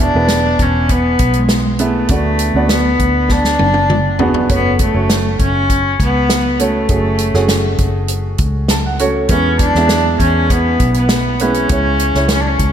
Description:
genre	piano-driven pop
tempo	100 BPM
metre	4/4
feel	straight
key	F# minor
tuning	A4 = 440 Hz
part	warm cello	melody	0.0-12.7 s	G#3 to D4	-16 LUFS	left 1 dB	slapback echo
part	warm upright piano	accompaniment	0.0-12.7 s	C#3 to A5	-19 LUFS	right 2 dB	slapback echo
part	vintage muted fingered electric bass	bass	0.0-12.7 s	E1 to E2	-18 LUFS	equal	none
part	natural country drum kit	drums	0.3-12.7 s	hi-hat, kick drum, snare drum, toms	-17 LUFS	equal	none
room	moderate lush hall reverb, RT60 1.9 s, studio reverb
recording	big arena sound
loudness	-12 LUFS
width	side -9 dB against mid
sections	0.0-12.7 A section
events	drum fill 3.3-4.5; upright piano fill 8.4-9.3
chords	0.0 E; 2.1 Bm/D; 4.5 F#m; 9.3 E; 11.7 C#m

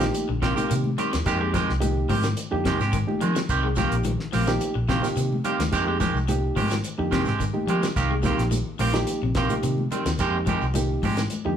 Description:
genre	afrobeat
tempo	108 BPM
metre	4/4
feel	straight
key	C minor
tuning	A4 = 440 Hz
part	reed electric piano	accompaniment	0.0-11.6 s	F3 to G4	-29 LUFS	right 2 dB	none
part	electric guitar at the edge of break-up	arpeggios	0.0-11.6 s	C3 to Ab3	-32 LUFS	left 7 dB	spring reverb
part	electric guitar at the edge of break-up	stabs	0.0-11.2 s	Eb3 to G4	-27 LUFS	right 4 dB	none
part	vintage muted fingered electric bass	bass	0.0-11.6 s	Bb1 to F3	-26 LUFS	equal	none
part	damped 70s drum kit	drums	0.0-11.4 s	hi-hat, kick drum, snare drum	-30 LUFS	equal	none
part	shekere	percussion	0.0-11.5 s	none	-37 LUFS	right 4 dB	none
part	congas	percussion	0.1-11.5 s	none	-33 LUFS	left 4 dB	none
room	moderate large studio reverb, RT60 0.9 s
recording	band playing live in one room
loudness	-21 LUFS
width	side -9 dB against mid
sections	0.0-11.6 A section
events	drum fill 7.5-8.0; reed electric piano fill 11.3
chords	0.0 Cm7; 1.3 Fm9; 3.5 Cm7; 5.7 Fm9; 8.0 Cm7; 10.2 Fm9

